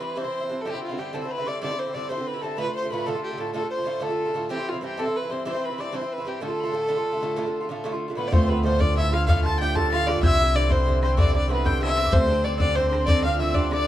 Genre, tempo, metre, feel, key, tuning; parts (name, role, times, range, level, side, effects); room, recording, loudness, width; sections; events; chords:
celtic folk, Celtic slide; 126 BPM (dotted quarters); 12/8; straight; D dorian; A4 = 440 Hz
warm fiddle; melody; 0.0-13.9 s; F4 to A5; -26 LUFS; equal
bright reedy mid whistle; second line; 0.0-13.9 s; F5 to A6; -33 LUFS; left 6 dB
Irish bouzouki; accompaniment; 0.0-13.9 s; G2 to F4; -30 LUFS; right 2 dB
cimbalom; second line; 8.2-13.9 s; B3 to A4; -30 LUFS; right 4 dB
upright bass; bass; 8.3-13.9 s; C2 to D2; -24 LUFS; equal
bodhran; percussion; 8.3-13.8 s; -24 LUFS; left 1 dB
light reverb; dark, warm production; -22 LUFS; side -13 dB against mid
0.0-8.3 A section; 8.3-13.9 B section
0.0 C; 0.7 Cadd9; 2.6 Dm; 4.5 C; 6.4 Dm; 10.2 Cadd9; 12.1 Gsus4/D